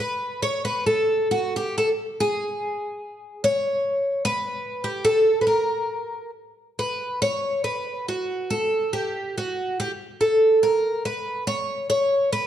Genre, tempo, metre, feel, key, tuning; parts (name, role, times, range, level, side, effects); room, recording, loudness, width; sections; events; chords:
fado; 71 BPM; 2/4; uneven beats, rubato; A4 = 441 Hz
picked twelve-string acoustic guitar; solo; 0.0-12.5 s; F#4 to C#5; -21 LUFS; equal
moderate recital hall reverb, RT60 1.5 s; dark, warm production; -21 LUFS; side -10 dB against mid
0.4-12.5 A section